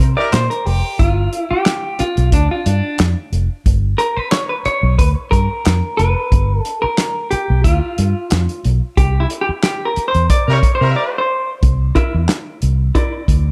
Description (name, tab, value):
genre	funk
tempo	90 BPM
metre	4/4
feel	straight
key	unclear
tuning	A4 = 441 Hz
part	vintage muted fingered electric bass	bass	0.0-13.5 s	F1 to C3	-18 LUFS	equal	none
part	warm soul drum kit	drums	0.0-13.4 s	handclaps, hi-hat, kick drum, snare drum	-19 LUFS	equal	none
part	clear horn section	second line	0.2-0.4, 10.5-11.2 s	G3 to Bb4	-24 LUFS	equal	slapback echo, plate reverb
part	semi-hollow electric guitar	accompaniment	0.2-13.1 s	D4 to E5	-22 LUFS	equal	spring reverb, plate reverb
room	light reverb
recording	none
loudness	-16 LUFS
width	mono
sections	0.0-11.6 A section; 11.6-13.5 B section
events	band accent 0.0-1.0, 9.0-11.6; clean electric guitar solo 0.0-11.6; break 11.0-11.6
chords	0.0 C9; 1.0 G7; 9.0 C5; 11.6 C9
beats	0.33 | 0.99 1.66 2.33 2.99 | 3.66 4.32 4.99 5.65 | 6.32 6.98 7.65 8.31 | 8.97 9.64 10.30 10.96 | 11.63 12.29 12.95